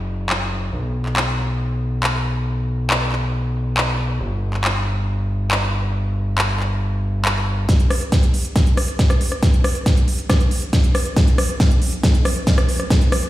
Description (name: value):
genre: uplifting trance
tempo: 138 BPM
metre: 4/4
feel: straight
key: unclear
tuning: A4 = 439 Hz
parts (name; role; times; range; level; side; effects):
- gritty driven synth bass; bass; 0.0-7.7 s; F#1 to B1; -21 LUFS; equal; sidechain pumping
- big-room dance drum kit; drums; 0.3-13.3 s; handclaps, hi-hat, rim click, snare drum; -22 LUFS; equal; sidechain pumping on hats
- electronic kick drum; drums; 7.7-13.0 s; none; -15 LUFS; equal; none
room: light reverb, digital ambience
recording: played on a big sound system in a bare room, stone room reverb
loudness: -17 LUFS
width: side -15 dB against mid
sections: 0.0-7.7 A section; 7.7-13.3 B section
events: build-up 7.7-13.3; drum fill 7.7-13.3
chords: none